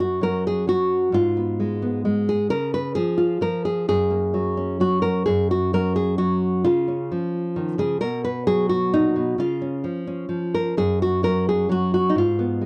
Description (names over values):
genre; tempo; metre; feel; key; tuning
folk, solo fingerstyle acoustic guitar; 131 BPM; 3/4; straight; F# major; A4 = 439 Hz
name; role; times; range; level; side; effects
nylon-string guitar; solo; 0.0-12.7 s; F#2 to B4; -22 LUFS; equal; none
room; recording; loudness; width
light reverb; dry, close 1970s-style studio recording; -22 LUFS; mono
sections
0.0-5.3 A section; 5.3-12.7 A section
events
none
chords
0.0 N.C.; 1.1 G#m; 2.5 C#; 3.9 F#; 6.7 C#; 8.0 B; 9.4 C#; 10.8 N.C.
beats
0.23 0.68 | 1.14 1.60 2.05 | 2.50 2.96 3.42 | 3.88 4.34 4.81 | 5.28 5.74 6.20 | 6.65 7.11 7.56 | 8.01 8.47 8.93 | 9.38 9.84 10.30 | 10.77 11.23 11.70 | 12.16 12.62